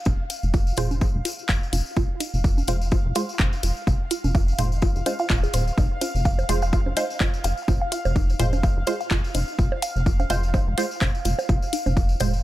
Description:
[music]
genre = minimal techno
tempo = 126 BPM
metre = 4/4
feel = swing 56% on 16ths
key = F minor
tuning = A4 = 441 Hz
[part]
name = bubbling stepped-filter texture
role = texture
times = 0.0-12.4 s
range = F5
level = -35 LUFS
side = equal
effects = chorus, built-in reverb, sidechain pumping
[part]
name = resonant blip pluck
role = riff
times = 0.1-12.3 s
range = Eb4 to F5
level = -31 LUFS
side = right 1 dB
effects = phaser, sidechain pumping, tape echo
[part]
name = rubbery square bass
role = bass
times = 0.1-12.4 s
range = Eb1 to F1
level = -24 LUFS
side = equal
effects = tube saturation, sidechain pumping
[part]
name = electronic kick drum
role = drums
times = 0.1-12.1 s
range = none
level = -22 LUFS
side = equal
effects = none
[part]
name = electronic bongos and toms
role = percussion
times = 0.1-12.3 s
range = none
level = -30 LUFS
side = right 3 dB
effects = none
[part]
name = tambourine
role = percussion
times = 0.1-12.4 s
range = none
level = -36 LUFS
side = left 4 dB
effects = none
[part]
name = house drum kit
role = drums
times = 0.3-12.3 s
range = handclaps, hi-hat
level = -29 LUFS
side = left 2 dB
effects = none
[part]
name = filtered dub chord stab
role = stabs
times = 0.8-12.3 s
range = Ab3 to C5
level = -30 LUFS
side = right 2 dB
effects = phaser, analog chorus, vintage 12-bit sampler grit, dub echo
[sound]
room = little or no reverb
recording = none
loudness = -20 LUFS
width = side -15 dB against mid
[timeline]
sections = 0.0-12.4 A section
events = filter sweep on synth arpeggio sound 0.0-12.4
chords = none

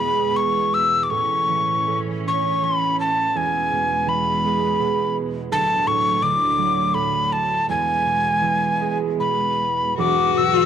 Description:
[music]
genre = celtic folk, Celtic slow air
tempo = 75-85 BPM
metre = 3/4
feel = rubato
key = unclear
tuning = A4 = 441 Hz
[part]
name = breathy mid whistle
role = melody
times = 0.0-10.7 s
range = G#5 to E6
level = -19 LUFS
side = left 2 dB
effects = none
[part]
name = concert harp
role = accompaniment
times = 0.0-10.7 s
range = E1 to C#4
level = -25 LUFS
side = right 10 dB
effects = none
[part]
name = clear symphonic string section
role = sustained chords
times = 0.0-10.7 s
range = D2 to C#4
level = -29 LUFS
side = equal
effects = none
[part]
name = warm cello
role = second line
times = 10.0-10.7 s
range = F#4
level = -19 LUFS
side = left 14 dB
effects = none
[sound]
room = moderate spring reverb, RT60 1.6 s, small room ambience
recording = 1960s-style stereo with parts hard left and right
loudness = -18 LUFS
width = side -9 dB against mid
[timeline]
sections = 0.0-10.0 A section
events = none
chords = 0.0 E; 1.1 A; 3.4 E; 5.5 D; 7.7 E; 10.0 Eadd9

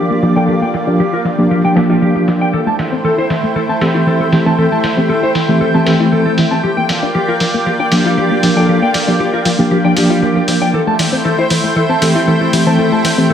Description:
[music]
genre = nu-disco, nu disco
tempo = 117 BPM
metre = 4/4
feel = straight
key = G dorian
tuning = A4 = 441 Hz
[part]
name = reed electric piano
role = accompaniment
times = 0.0-13.3 s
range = E3 to A4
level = -14 LUFS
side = equal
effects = overdrive, fast tremolo, tape echo
[part]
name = lush unison pad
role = sustained chords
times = 0.0-13.3 s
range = A3 to G5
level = -17 LUFS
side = right 1 dB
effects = chorus
[part]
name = electric guitar through a small old amp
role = riff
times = 0.0-13.3 s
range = G3 to A5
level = -19 LUFS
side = left 2 dB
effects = wide subtle chorus, low-pass filter, tape echo
[part]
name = soft round pluck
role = arpeggios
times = 0.1-13.3 s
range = E3 to F4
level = -18 LUFS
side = left 2 dB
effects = chorus, tape echo
[part]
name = electronic hi-hat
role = drums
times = 0.2-13.2 s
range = none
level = -22 LUFS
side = equal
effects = low-pass filter on hats, low-pass filter on perc, low-pass filter on snare, low-pass filter on toms, low-pass filter on room
[sound]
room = wet echo chamber reverb, RT60 2.2 s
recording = echo-heavy mix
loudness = -11 LUFS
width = side -8 dB against mid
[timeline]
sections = 0.0-13.3 A section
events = filter sweep on drum 0.0-13.3; filter sweep on analog synth pad 0.0-13.3; filter sweep on synth arpeggio sound 0.0-13.3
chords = 0.0 Gm7; 2.5 Am7; 6.6 Gm7; 10.7 Am7

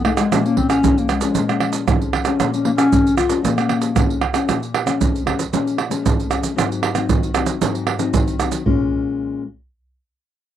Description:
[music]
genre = samba and choro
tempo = 115 BPM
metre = 4/4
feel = straight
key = Bb minor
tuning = A4 = 440 Hz
[part]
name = breathy clarinet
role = melody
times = 0.0-4.2 s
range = Ab3 to F4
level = -18 LUFS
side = left 3 dB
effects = none
[part]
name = nylon-string guitar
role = accompaniment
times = 0.0-9.4 s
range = F2 to G#4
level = -22 LUFS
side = left 5 dB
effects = none
[part]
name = pandeiro, tamborim, maracas and surdo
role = percussion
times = 0.0-8.8 s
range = none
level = -19 LUFS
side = right 4 dB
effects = none
[sound]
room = moderate booth ambience, RT60 0.3 s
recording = dry, close 1970s-style studio recording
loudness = -16 LUFS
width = side -10 dB against mid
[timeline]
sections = 0.0-4.5 A section; 4.5-8.7 B section; 8.7-10.6 C section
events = none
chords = 0.3 Bbm7; 6.6 Ab7; 8.7 Bbm7

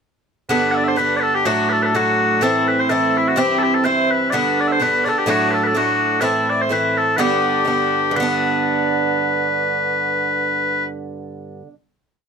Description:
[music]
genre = celtic folk, Celtic polka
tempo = 126 BPM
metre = 2/4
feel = swing 53% on 8ths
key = G major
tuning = A4 = 440 Hz
[part]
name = loud bright bagpipes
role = melody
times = 0.5-10.9 s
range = E4 to F#5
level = -18 LUFS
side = left 2 dB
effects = none
[part]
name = Irish bouzouki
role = accompaniment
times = 0.5-11.7 s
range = G2 to E4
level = -20 LUFS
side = right 2 dB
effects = none
[sound]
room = light reverb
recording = close, detailed microphones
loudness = -16 LUFS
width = side -6 dB against mid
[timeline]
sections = 0.5-8.2 A section; 8.2-10.1 final chord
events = none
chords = 0.5 G; 1.5 D; 2.4 Am; 3.4 C; 4.3 G; 5.3 D; 6.2 Am; 7.2 G

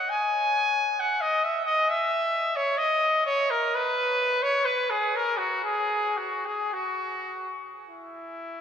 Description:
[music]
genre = classical, free, expressive piece for unaccompanied trumpet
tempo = 52-69 BPM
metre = 3/4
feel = rubato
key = unclear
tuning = A4 = 442 Hz
[part]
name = clear trumpet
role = solo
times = 0.0-8.6 s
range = E4 to G#5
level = -24 LUFS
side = left 1 dB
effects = none
[sound]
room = wet cathedral reverb, RT60 5.2 s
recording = recorded in a church or concert hall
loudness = -23 LUFS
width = side -8 dB against mid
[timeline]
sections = 0.0-8.6 A section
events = none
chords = none

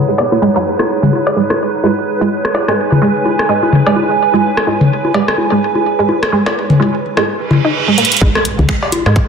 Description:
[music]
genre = minimal techno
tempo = 127 BPM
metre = 4/4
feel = swing 59% on 16ths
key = G# minor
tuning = A4 = 440 Hz
[part]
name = swarming drone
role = texture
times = 0.0-7.7 s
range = B4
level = -23 LUFS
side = right 3 dB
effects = built-in reverb, sidechain pumping
[part]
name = warbly tape-like pad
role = texture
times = 0.0-7.7 s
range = D#4 to G#5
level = -18 LUFS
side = right 4 dB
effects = chorus, built-in reverb, sidechain pumping
[part]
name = resonant blip pluck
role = riff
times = 0.1-9.1 s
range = F#3 to D#4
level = -17 LUFS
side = right 2 dB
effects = wide subtle chorus, vintage 12-bit sampler grit, sidechain pumping, dub echo
[part]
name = booming analog drum machine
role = percussion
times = 0.2-9.1 s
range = congas, cowbell, rim click, toms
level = -15 LUFS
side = left 3 dB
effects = soft clipping on snare, studio reverb, ping-pong delay
[part]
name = reverse cymbal and impact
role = sound effects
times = 7.5-9.3 s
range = none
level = -17 LUFS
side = right 6 dB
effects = none
[part]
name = garage drum kit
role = drums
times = 8.0-9.0 s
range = finger snaps, hi-hat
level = -19 LUFS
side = left 2 dB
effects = studio reverb, soft clipping on snare
[part]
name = woody FM bass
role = bass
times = 8.2-9.2 s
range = G#1 to G#2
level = -13 LUFS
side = equal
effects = sidechain pumping
[part]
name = electronic kick drum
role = drums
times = 8.2-9.3 s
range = none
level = -13 LUFS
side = equal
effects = studio reverb
[sound]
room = moderate lush hall reverb, RT60 1.8 s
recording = dense, heavily limited modern master, low-pass filter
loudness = -11 LUFS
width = side -6 dB against mid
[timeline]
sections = 0.0-8.2 A section; 8.2-9.3 B section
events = filter sweep on synth pluck 0.0-8.2; filter sweep 0.0-8.2; reverse cymbal 7.5-8.2; drum fill 8.0; drop 8.2-9.3; impact 8.2-9.3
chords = 0.0 G#m7; 8.2 N.C.

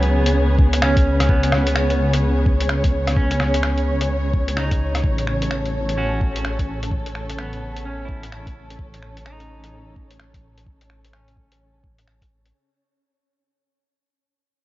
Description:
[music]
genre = future garage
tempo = 128 BPM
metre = 4/4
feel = swing 62% on 16ths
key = unclear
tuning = A4 = 439 Hz
[part]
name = clean electric guitar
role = accompaniment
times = 0.0-12.0 s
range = F#3 to F#4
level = -28 LUFS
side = right 2 dB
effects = vintage 12-bit sampler grit, sidechain pumping, low-pass filter, tape echo
[part]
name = dark studio string section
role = sustained chords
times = 0.0-12.5 s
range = C#3 to C#5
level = -25 LUFS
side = equal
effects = vintage 12-bit sampler grit, sidechain pumping
[part]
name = dark detuned saw bass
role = bass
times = 0.0-12.5 s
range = A1 to C#2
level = -22 LUFS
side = equal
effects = sidechain pumping
[part]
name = lo-fi sampler-style drum kit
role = drums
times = 0.0-12.5 s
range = finger snaps, hi-hat, rim click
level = -26 LUFS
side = equal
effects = none
[part]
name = flickering grainy texture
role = texture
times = 0.1-12.5 s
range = C#4 to C#5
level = -32 LUFS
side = equal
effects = none
[part]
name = electronic kick drum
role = drums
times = 0.6-12.3 s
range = none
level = -19 LUFS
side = equal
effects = none
[sound]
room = light reverb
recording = vinyl crackle, nothing above 7.6 kHz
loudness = -17 LUFS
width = side -16 dB against mid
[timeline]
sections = 0.0-12.5 A section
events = fade-out 0.0-12.5; filter sweep on clean electric guitar 0.0-12.5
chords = 0.0 C#7(no3); 5.0 A

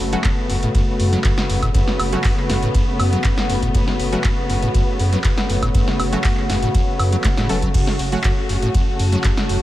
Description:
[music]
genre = acid house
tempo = 120 BPM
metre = 4/4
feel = straight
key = F# minor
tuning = A4 = 440 Hz
[part]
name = warm studio string section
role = sustained chords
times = 0.0-9.6 s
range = C#3 to F#4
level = -24 LUFS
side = left 1 dB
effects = sidechain pumping
[part]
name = warm sub bass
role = bass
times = 0.0-9.6 s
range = E1 to F#2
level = -21 LUFS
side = equal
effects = sidechain pumping
[part]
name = electro analog drum machine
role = drums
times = 0.0-9.6 s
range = crash cymbal, handclaps, hi-hat, ride cymbal, snare drum, woodblock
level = -25 LUFS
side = right 1 dB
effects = none
[part]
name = warbly tape-like pad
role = texture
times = 0.0-9.6 s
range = F#4 to A5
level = -28 LUFS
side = left 1 dB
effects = chorus, built-in reverb, sidechain pumping
[part]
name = acid bass, square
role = riff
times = 0.1-9.6 s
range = F#2 to A3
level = -25 LUFS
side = equal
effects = wide subtle chorus, sidechain pumping, diffuse ambient delay
[part]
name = filtered dub chord stab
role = stabs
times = 0.1-8.2 s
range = A3 to A4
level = -29 LUFS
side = right 2 dB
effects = chorus, vintage 12-bit sampler grit, diffuse ambient delay
[part]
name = electronic kick drum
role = drums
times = 0.2-9.3 s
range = none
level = -20 LUFS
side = equal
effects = none
[sound]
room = light reverb, digital ambience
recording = none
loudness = -16 LUFS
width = side -14 dB against mid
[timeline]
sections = 0.0-9.6 A section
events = none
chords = 0.0 F#m

